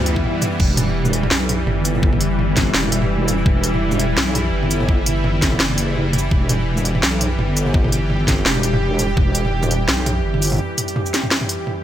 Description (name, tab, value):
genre	half-time drum and bass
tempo	168 BPM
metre	4/4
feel	swing 56% on 16ths, half-time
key	E minor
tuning	A4 = 440 Hz
part	bowed-like drone	sustained chords	0.0-11.8 s	E3 to G4	-22 LUFS	right 1 dB	built-in reverb, sidechain pumping
part	deep soft wobble bass	bass	0.0-10.6 s	E1 to D2	-20 LUFS	equal	chorus
part	swell	sound effects	0.0-0.6 s	none	-30 LUFS	left 2 dB	none
part	drum and bass drum kit	drums	0.1-11.8 s	crash cymbal, hi-hat, shaker, snare drum, toms	-20 LUFS	equal	none
part	electronic kick drum	drums	0.2-9.2 s	none	-18 LUFS	equal	none
room	light reverb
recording	bright 1980s-style digital production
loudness	-16 LUFS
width	side -11 dB against mid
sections	0.0-11.8 A section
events	swell 0.0-0.6; break 0.2-0.6, 10.6-11.8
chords	0.0 Em